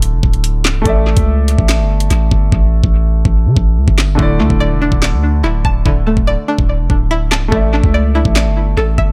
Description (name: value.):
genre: hip hop, drill.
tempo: 144 BPM.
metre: 4/4.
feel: half-time.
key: unclear.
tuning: A4 = 439 Hz.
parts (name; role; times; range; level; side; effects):
warm concert grand piano; accompaniment; 0.0-9.1 s; D3 to E5; -23 LUFS; equal; none.
long sustained 808-style bass; bass; 0.0-9.1 s; C#1 to C#3; -16 LUFS; equal; none.
drill drum kit; drums; 0.0-9.1 s; handclaps, hi-hat, kick drum, snare drum; -18 LUFS; equal; overdrive, tape echo.
string-like resonator pluck; arpeggios; 4.2-9.1 s; D3 to A5; -20 LUFS; equal; chorus, phaser, tape echo.
room: little or no reverb.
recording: echo-heavy mix.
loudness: -13 LUFS.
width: mono.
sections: 0.0-9.1 A section.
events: hi-hats muted 2.5-4.2, 4.2-9.1.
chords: 0.0 Dsus2; 0.9 Asus4; 4.2 Dsus2; 7.5 Asus4.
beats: 0.02 0.44 | 0.86 1.27 1.69 2.11 | 2.52 2.94 3.36 3.77 | 4.19 4.61 5.02 5.44 | 5.86 6.27 6.69 7.11 | 7.52 7.94 8.36 8.77.